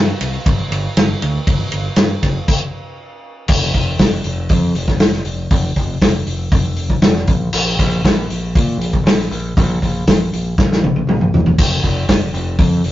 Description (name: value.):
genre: classic rock.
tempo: 118 BPM.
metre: 4/4.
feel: straight.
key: unclear.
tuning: A4 = 440 Hz.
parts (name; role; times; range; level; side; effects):
growling fingered electric bass; bass; 0.0-12.9 s; E1 to Bb2; -19 LUFS; equal; overdrive.
vintage drum kit; drums; 0.2-12.9 s; crash cymbal, hi-hat, kick drum, ride cymbal, snare drum, toms; -15 LUFS; equal; none.
room: moderate studio reverb, RT60 0.6 s.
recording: rough rehearsal-room recording, tube saturation, nothing above 7.5 kHz.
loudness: -13 LUFS.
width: side -14 dB against mid.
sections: 0.0-3.5 A section; 3.5-12.9 B section.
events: stop 2.5-3.5; drum fill 10.6-11.6.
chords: none.